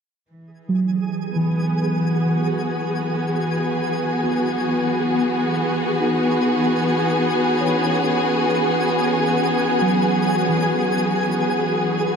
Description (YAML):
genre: ambient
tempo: 68 BPM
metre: 4/4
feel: straight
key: E major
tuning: A4 = 440 Hz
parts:
  - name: warm studio string section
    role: sustained chords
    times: 0.3-12.2 s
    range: E3 to G#4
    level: -20 LUFS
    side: left 1 dB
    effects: none
  - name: twinkling granular texture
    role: texture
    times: 0.9-12.2 s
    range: G#4 to G#5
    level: -26 LUFS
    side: right 2 dB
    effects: built-in reverb
  - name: muted felt-like synth keys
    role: arpeggios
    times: 0.7-12.2 s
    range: E3 to B5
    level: -23 LUFS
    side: equal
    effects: chorus, ping-pong delay
room: wet huge ambient reverb, RT60 8.0 s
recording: in a vast, echoing space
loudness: -18 LUFS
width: side -6 dB against mid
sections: 0.3-12.2 A section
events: none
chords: 0.3 Eadd9